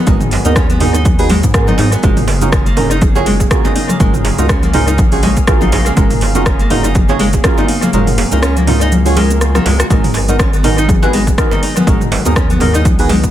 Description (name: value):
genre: afro house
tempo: 122 BPM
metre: 4/4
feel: swing 56% on 16ths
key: unclear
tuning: A4 = 438 Hz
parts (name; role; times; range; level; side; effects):
- warm analog pad; sustained chords; 0.0-13.3 s; C#3 to E#5; -22 LUFS; equal; chorus, phaser, sidechain pumping
- nylon-string guitar; arpeggios; 0.0-13.2 s; D#3 to G#4; -19 LUFS; left 1 dB; sidechain pumping, dub echo
- deep mellow chord stab; stabs; 0.0-13.1 s; B3 to C#5; -19 LUFS; right 3 dB; chorus, sidechain pumping, dub echo
- round analog bass; bass; 0.1-13.3 s; F#1 to G#2; -16 LUFS; equal; sidechain pumping
- electronic kick drum; drums; 0.1-13.3 s; none; -14 LUFS; equal; overdrive
- house drum kit; drums; 0.1-13.3 s; cabasa, hi-hat, rim click, toms; -19 LUFS; equal; overdrive, dub echo
- djembe; percussion; 0.3-13.2 s; none; -22 LUFS; right 4 dB; none
- congas; percussion; 0.4-13.3 s; none; -21 LUFS; left 2 dB; none
room: light reverb, digital ambience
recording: echo-heavy mix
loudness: -10 LUFS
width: side -12 dB against mid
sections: 0.0-13.3 A section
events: kick drops out 7.9-9.9; drum fill 9.4-9.9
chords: 0.0 G#m7; 2.0 F#maj7; 9.9 G#m7